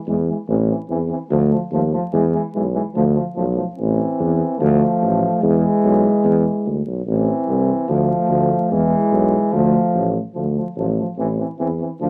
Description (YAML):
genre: balkan folk, Balkan brass band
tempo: 146 BPM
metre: 2/4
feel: straight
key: D dorian sharp4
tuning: A4 = 441 Hz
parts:
  - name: clear euphonium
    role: accompaniment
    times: 0.1-12.1 s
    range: E3 to F3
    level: -25 LUFS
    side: equal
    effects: none
  - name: mellow euphonium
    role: accompaniment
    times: 0.1-12.1 s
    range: G#3 to D4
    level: -24 LUFS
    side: equal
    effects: none
  - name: mellow tuba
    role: bass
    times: 0.1-12.1 s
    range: A1 to E2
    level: -21 LUFS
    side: equal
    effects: none
room: moderate studio reverb, RT60 0.5 s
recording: vinyl crackle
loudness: -19 LUFS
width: mono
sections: 0.0-3.8 A section; 3.8-10.4 A section; 10.4-12.1 B section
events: none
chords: 0.5 Am; 1.3 Dm; 2.1 E; 2.9 Dm; 3.8 Am; 4.6 Dm; 5.4 E; 7.1 Am; 7.9 Dm; 8.7 E; 9.5 Dm; 11.2 Am